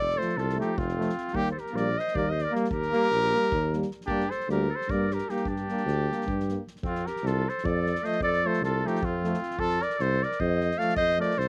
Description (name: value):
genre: balkan folk, Balkan brass band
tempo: 305 BPM (eighths)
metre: 7/8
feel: straight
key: unclear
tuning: A4 = 440 Hz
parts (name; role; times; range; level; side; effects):
- clear flugelhorn; melody; 0.0-11.5 s; F4 to F5; -31 LUFS; equal; none
- clear clarinet; second line; 0.0-11.5 s; C4 to D5; -37 LUFS; equal; slapback echo
- mellow tuba; bass; 0.0-11.5 s; F1 to G2; -32 LUFS; equal; none
- soft-mallet drum kit; percussion; 0.1-11.4 s; kick drum, snare drum; -42 LUFS; equal; none
- clear trombone; accompaniment; 0.2-11.3 s; A3 to Bb3; -36 LUFS; equal; none
- dark euphonium; accompaniment; 0.2-11.3 s; F3 to G3; -36 LUFS; equal; none
room: little or no reverb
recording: recorded outdoors, with no room sound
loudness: -27 LUFS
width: mono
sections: 0.0-6.8 A section; 6.8-11.5 A section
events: none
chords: 0.0 F; 1.3 Eb; 4.1 Gm; 6.8 F